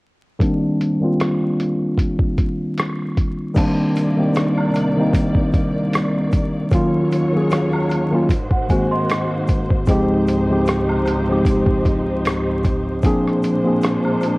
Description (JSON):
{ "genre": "lo-fi hip hop", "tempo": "76 BPM", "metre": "4/4", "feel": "swing 56% on 16ths", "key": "unclear", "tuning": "A4 = 440 Hz", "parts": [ { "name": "tine electric piano", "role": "accompaniment", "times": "0.4-14.4 s", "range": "Db2 to Ab4", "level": "-18 LUFS", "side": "equal", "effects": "cassette tape, low-pass filter" }, { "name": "lo-fi sampler-style drum kit", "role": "drums", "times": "0.4-14.4 s", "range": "crash cymbal, hi-hat, kick drum, rim click", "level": "-20 LUFS", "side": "equal", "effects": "cassette tape" }, { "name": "tube shaker and woodblock", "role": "percussion", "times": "3.5-14.4 s", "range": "none", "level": "-32 LUFS", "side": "right 1 dB", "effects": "none" }, { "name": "warm studio string section", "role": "sustained chords", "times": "3.6-14.4 s", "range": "C2 to D5", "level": "-24 LUFS", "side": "equal", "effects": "low-pass filter, cassette tape" }, { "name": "celesta", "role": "second line", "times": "8.5-9.8 s", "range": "C5 to C6", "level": "-24 LUFS", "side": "right 2 dB", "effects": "low-pass filter, cassette tape, tape echo" } ], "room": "light reverb, studio ambience", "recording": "home recording on cassette, vinyl crackle", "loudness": "-16 LUFS", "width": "side -23 dB against mid", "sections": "0.4-3.6 A section; 3.6-14.4 B section", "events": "filter sweep on tine electric piano 0.4-3.6", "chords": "0.4 Cm9; 6.7 Ebm7; 8.3 Ab7; 9.9 Dbmaj9#11; 13.0 Bb9" }